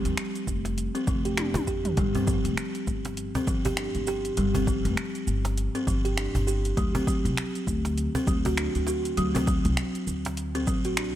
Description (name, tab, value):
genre	organic downtempo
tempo	100 BPM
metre	4/4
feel	swing 59% on 16ths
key	unclear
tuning	A4 = 439 Hz
part	buzzing kalimba	arpeggios	0.0-11.1 s	F3 to G4	-28 LUFS	equal	low-pass filter, digital delay
part	upright bass	bass	0.0-11.1 s	F1 to F2	-29 LUFS	equal	none
part	deep house drum kit	drums	0.1-11.1 s	finger snaps, hi-hat, shaker, toms	-32 LUFS	right 1 dB	overdrive
part	cajon	percussion	0.1-10.4 s	none	-33 LUFS	right 1 dB	none
part	electronic kick drum	drums	0.5-10.8 s	none	-29 LUFS	equal	overdrive
room	small room reverb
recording	none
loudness	-24 LUFS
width	side -12 dB against mid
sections	0.0-11.2 A section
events	drum fill 1.4-2.0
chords	0.0 F5; 2.0 G7(no3); 6.8 D7